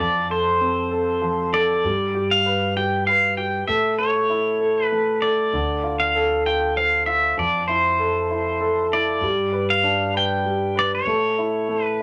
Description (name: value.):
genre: acoustic folk-pop ballad.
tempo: 98 BPM.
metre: 3/4.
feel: straight.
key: unclear.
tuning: A4 = 440 Hz.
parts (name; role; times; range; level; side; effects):
pedal steel guitar; melody; 0.0-12.0 s; C5 to G5; -24 LUFS; equal; none.
clear upright piano; accompaniment; 0.0-12.0 s; D3 to B4; -25 LUFS; equal; none.
upright bass; bass; 0.0-12.0 s; D2 to A2; -34 LUFS; equal; none.
room: moderate studio reverb, RT60 0.5 s.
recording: none.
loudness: -21 LUFS.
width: mono.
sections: 0.0-12.0 A section.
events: none.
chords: 0.0 F; 1.8 G; 3.7 A; 5.5 Dm7; 7.4 Fmaj7; 9.2 G; 11.1 A.